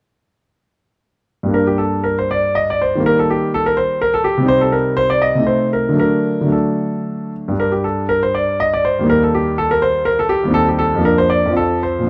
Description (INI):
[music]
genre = classical, baroque-style suite movement for grand piano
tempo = 105-126 BPM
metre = 3/4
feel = rubato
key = G minor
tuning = A4 = 439 Hz
[part]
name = warm concert grand piano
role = solo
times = 1.4-12.1 s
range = Eb2 to Eb5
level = -16 LUFS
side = equal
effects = none
[sound]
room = moderate stone room reverb, RT60 1.1 s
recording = dark, warm production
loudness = -16 LUFS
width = mono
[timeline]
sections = 1.5-12.1 A section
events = none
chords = 1.5 Gm; 3.0 Eb; 4.5 Cm; 5.5 Adim/C; 6.0 D; 7.6 G5; 9.1 Eb; 10.6 Cm/Eb; 11.0 Bb/F; 11.5 F